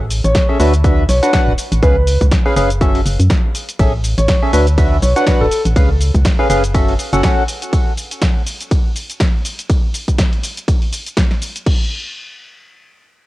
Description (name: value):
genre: piano house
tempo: 122 BPM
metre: 4/4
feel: swing 56% on 16ths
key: unclear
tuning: A4 = 439 Hz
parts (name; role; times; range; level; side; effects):
- organ-like FM bass; bass; 0.0-7.2 s; D1 to F#2; -14 LUFS; equal; sidechain pumping
- punchy analog drum machine; drums; 0.1-11.8 s; crash cymbal, hi-hat, ride cymbal, shaker, snare drum; -23 LUFS; equal; cassette tape
- warm concert grand piano; melody; 0.2-5.6 s; A4 to C#5; -21 LUFS; equal; tape echo
- electronic kick drum; drums; 0.4-11.8 s; none; -15 LUFS; equal; overdrive, cassette tape
- percussive organ stab; riff; 0.5-7.4 s; C#4 to F#5; -18 LUFS; equal; wide subtle chorus, sidechain pumping, cassette tape, tape echo
room: little or no reverb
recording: home recording on cassette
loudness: -12 LUFS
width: side -17 dB against mid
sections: 0.0-11.7 A section; 11.7-13.3 B section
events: drop 0.0-11.7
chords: 0.0 Amaj7; 0.6 D69; 1.8 C#7; 2.8 F#m7; 3.8 Amaj7; 4.5 D69; 5.8 C#7; 6.7 F#m7; 7.7 N.C.